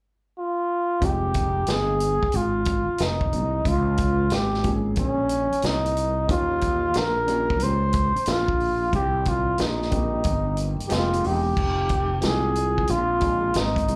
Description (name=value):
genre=hip hop, jazz-hop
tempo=91 BPM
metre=4/4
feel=swing 65% on 16ths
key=F minor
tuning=A4 = 441 Hz
part: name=breathy flugelhorn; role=melody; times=0.4-14.0 s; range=Db4 to C5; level=-26 LUFS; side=equal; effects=slapback echo
part: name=warm upright piano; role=accompaniment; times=1.0-13.5 s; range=Eb3 to Ab4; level=-34 LUFS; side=equal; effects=slapback echo
part: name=sustaining fretless electric bass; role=bass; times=1.0-14.0 s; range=E1 to Eb2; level=-28 LUFS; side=equal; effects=none
part: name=vintage drum kit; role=drums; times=1.0-14.0 s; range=crash cymbal, hi-hat, kick drum, snare drum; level=-30 LUFS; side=equal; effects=none
part: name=vibraphone with medium hard mallets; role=second line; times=10.9-14.0 s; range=C4 to F4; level=-36 LUFS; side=equal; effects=none
room=little or no reverb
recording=live gig heard through the venue's PA, club reverb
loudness=-23 LUFS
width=mono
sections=0.0-1.0 A section; 1.0-11.6 B section; 11.6-14.0 B section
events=none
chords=0.0 N.C.; 1.0 Fm9; 3.7 Db6; 6.3 Eb9; 8.9 Cm7; 10.9 Fm11; 11.6 Fm9